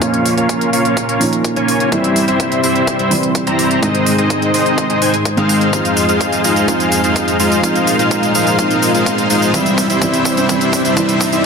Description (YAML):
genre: EDM, festival progressive house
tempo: 126 BPM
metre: 4/4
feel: straight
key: unclear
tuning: A4 = 439 Hz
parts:
  - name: felt-muted upright piano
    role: accompaniment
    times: 0.0-11.5 s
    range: Ab2 to F4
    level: -18 LUFS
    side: right 2 dB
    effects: sidechain pumping, tape echo
  - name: lush unison pad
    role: sustained chords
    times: 0.0-11.5 s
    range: F2 to C5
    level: -21 LUFS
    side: left 2 dB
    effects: chorus, sidechain pumping
  - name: dense compressed supersaw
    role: riff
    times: 0.0-11.4 s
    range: G3 to Bb5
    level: -15 LUFS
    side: left 1 dB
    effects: sidechain pumping, low-pass filter, tape echo
  - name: electronic hi-hat and cabasa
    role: drums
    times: 0.0-11.4 s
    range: none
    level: -22 LUFS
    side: right 2 dB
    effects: none
  - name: electronic kick drum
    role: drums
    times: 0.0-11.3 s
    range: none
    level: -22 LUFS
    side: left 1 dB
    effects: overdrive, high-pass filter on kick
  - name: riser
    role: sound effects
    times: 8.7-11.5 s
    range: none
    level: -26 LUFS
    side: equal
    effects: none
room: moderate lush hall reverb, RT60 2.6 s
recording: dense, heavily limited modern master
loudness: -12 LUFS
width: side -5 dB against mid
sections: 0.0-11.5 A section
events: build-up 0.0-11.5; drum fill 5.7-11.5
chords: 0.0 Bbm; 1.9 C; 3.8 Ab; 5.7 Fm7; 7.6 Bb5; 9.5 C